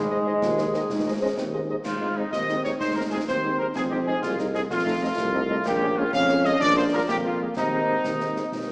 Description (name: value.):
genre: military-style march for wind band.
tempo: 126 BPM (dotted quarters).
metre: 6/8.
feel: straight.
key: Ab major.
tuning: A4 = 440 Hz.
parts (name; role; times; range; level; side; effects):
warm woodwind section; second line; 0.0-8.7 s; G4 to Eb5; -36 LUFS; equal; none.
bright trombone section; sustained chords; 0.0-1.3 s; Ab3; -27 LUFS; equal; none.
mellow tuba; bass; 0.0-8.7 s; Bb1 to Ab2; -28 LUFS; equal; none.
bright trumpet section; melody; 0.1-8.7 s; Eb4 to F5; -26 LUFS; equal; none.
mellow French horn section; accompaniment; 0.1-8.7 s; G3 to C5; -32 LUFS; left 1 dB; none.
warm euphonium; second line; 0.4-8.7 s; Eb3 to Eb4; -28 LUFS; equal; none.
concert snare drum, concert bass drum and clash cymbals; drums; 0.4-8.7 s; none; -35 LUFS; equal; none.
room: wet concert hall reverb, RT60 2.0 s.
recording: small speaker sound.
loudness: -22 LUFS.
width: side -28 dB against mid.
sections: 0.0-1.9 A section; 1.9-8.7 A section.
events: none.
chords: 0.0 Ab; 3.8 Fm7; 4.7 F7; 5.7 Bbm7; 6.6 Bb7; 7.6 Ab/Eb.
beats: 0.42 | 0.90 1.38 | 1.85 2.33 | 2.80 3.28 | 3.75 4.23 | 4.71 5.18 | 5.66 6.14 | 6.61 7.09 | 7.57 8.04 | 8.52.